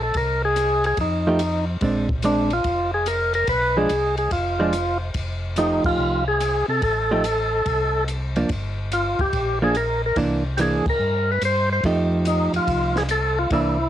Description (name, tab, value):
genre	soul jazz organ trio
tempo	144 BPM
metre	4/4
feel	swing 67% on 8ths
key	F mixolydian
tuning	A4 = 439 Hz
part	percussive tonewheel organ	melody	0.0-13.9 s	D4 to C5	-21 LUFS	equal	slow rotary speaker, cassette tape
part	mellow tonewheel organ	bass	0.0-13.9 s	F1 to C3	-26 LUFS	equal	slow rotary speaker
part	compact cocktail drum kit	drums	0.1-13.6 s	crash cymbal, hi-hat, kick drum, ride cymbal, snare drum	-30 LUFS	left 1 dB	cassette tape
part	hollow-body jazz guitar	accompaniment	1.3-13.8 s	E3 to G4	-22 LUFS	right 2 dB	cassette tape
room	light reverb, studio reverb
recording	home recording on cassette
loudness	-19 LUFS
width	side -11 dB against mid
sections	0.0-13.9 A section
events	band accent 5.8, 10.8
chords	0.2 Abadd9/C; 1.0 F9; 1.8 Bb9; 3.5 Bdim7; 5.2 F9; 8.5 Gm7; 10.2 C9; 11.8 F9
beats	| 0.15 0.57 0.99 1.40 | 1.82 2.24 2.65 3.07 | 3.49 3.90 4.32 4.74 | 5.16 5.57 5.99 6.41 | 6.83 7.24 7.66 8.08 | 8.50 8.91 9.33 9.75 | 10.17 10.59 11.00 11.42 | 11.84 12.26 12.67 13.09 | 13.51